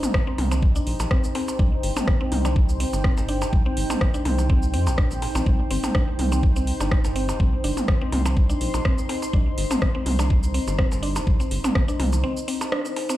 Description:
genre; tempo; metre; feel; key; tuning
minimal techno; 124 BPM; 4/4; swing 54% on 16ths; C minor; A4 = 440 Hz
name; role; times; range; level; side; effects
garage drum kit; drums; 0.0-13.2 s; hi-hat, rim click, shaker; -31 LUFS; equal; small room ambience
electronic toms and percussion blips; percussion; 0.0-13.2 s; none; -29 LUFS; equal; small room ambience, tape echo
deep dark ambient pad; texture; 0.0-13.2 s; Eb4 to C6; -30 LUFS; equal; chorus, built-in reverb, sidechain pumping
electronic kick drum; drums; 0.1-11.9 s; none; -20 LUFS; equal; small room ambience
mallet-like synth pluck; riff; 0.3-13.2 s; C4 to D4; -31 LUFS; equal; chorus, sidechain pumping, dub echo
rubbery square bass; bass; 0.4-12.2 s; G1 to F2; -24 LUFS; equal; tube saturation, sidechain pumping
room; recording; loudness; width
light reverb; played on a big sound system in a bare room, large studio reverb; -20 LUFS; side -14 dB against mid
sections
0.0-13.2 A section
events
break 12.2-13.2; band accent 12.7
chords
0.0 Cm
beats
0.14 0.62 1.11 | 1.59 2.08 2.56 3.04 | 3.53 4.01 4.50 4.98 | 5.46 5.95 6.43 6.92 | 7.40 7.88 8.37 8.85 | 9.34 9.82 10.30 10.79 | 11.27 11.75 12.24 12.72

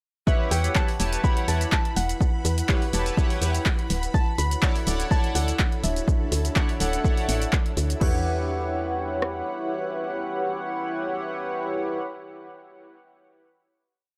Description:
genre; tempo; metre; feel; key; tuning
deep house; 124 BPM; 4/4; swing 53% on 16ths; E dorian; A4 = 439 Hz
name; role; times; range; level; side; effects
soft round pluck; melody; 0.3-7.2 s; E5 to B5; -36 LUFS; equal; chorus, tape echo
chorused polysynth; stabs; 0.3-12.0 s; E4 to A5; -32 LUFS; equal; tape echo
deep house drum kit; drums; 0.3-9.3 s; kick drum, rim click; -25 LUFS; equal; none
punchy analog drum machine; drums; 0.3-8.1 s; crash cymbal, handclaps, hi-hat, shaker; -32 LUFS; equal; overdrive
ethereal airy pad; texture; 1.6-12.1 s; D4 to F#5; -38 LUFS; equal; ensemble chorus, built-in reverb, tremolo, sidechain pumping
string machine, violins; texture; 0.3-8.0 s; B5; -44 LUFS; equal; ensemble chorus, sidechain pumping
woody FM bass; bass; 0.5-9.4 s; D1 to E2; -28 LUFS; equal; sidechain pumping
dark analog pad; sustained chords; 4.1-12.0 s; E4 to F#5; -39 LUFS; equal; lush chorus, sidechain pumping
room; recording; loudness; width
little or no reverb; dry, gritty hardware recording; -25 LUFS; mono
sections
0.3-8.0 drop; 8.0-11.9 final chord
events
drop 0.3-8.0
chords
0.3 Em69; 3.9 Dmaj9; 8.0 Em69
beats
| 0.27 0.76 1.24 1.72 | 2.21 2.69 3.17 3.66 | 4.14 4.63 5.11 5.59 | 6.08 6.56 7.04 7.53 | 8.01 8.50 8.98 9.46 | 9.95 10.43 10.92 11.40

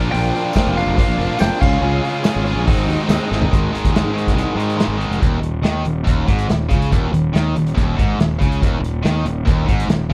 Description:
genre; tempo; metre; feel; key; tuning
classic rock; 141 BPM; 4/4; straight; unclear; A4 = 440 Hz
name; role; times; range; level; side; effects
overdriven reed electric piano; accompaniment; 0.0-3.4 s; Eb4 to F5; -32 LUFS; equal; none
tonewheel organ; sustained chords; 0.0-3.5 s; C4 to F5; -35 LUFS; equal; none
distorted electric guitar; riff; 0.0-10.1 s; Eb2 to Ab4; -26 LUFS; equal; distortion
tight distorted guitar; riff; 0.0-10.1 s; Eb2 to Ab4; -26 LUFS; equal; distortion
fuzz fingered electric bass; bass; 0.0-10.1 s; Eb1 to Ab2; -23 LUFS; equal; overdrive
lightly driven lead guitar; melody; 0.1-2.2 s; F5 to G5; -25 LUFS; equal; none
vintage drum kit; drums; 0.1-10.0 s; crash cymbal, hi-hat, kick drum, snare drum, toms; -21 LUFS; equal; none
tambourine; percussion; 0.5-3.2 s; none; -41 LUFS; equal; none
room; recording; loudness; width
little or no reverb; none; -18 LUFS; mono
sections
0.0-3.5 A section; 3.5-5.2 B section; 5.2-10.1 C section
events
drum fill 3.3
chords
0.0 Bb; 1.6 Db; 2.7 Ab; 3.5 Ab5; 5.2 Eb5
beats
| 0.12 0.54 0.96 1.39 | 1.81 2.23 2.66 3.08 | 3.51 3.93 4.36 4.78 | 5.21 5.63 6.06 6.49 | 6.91 7.34 7.76 8.19 | 8.62 9.04 9.47 9.89

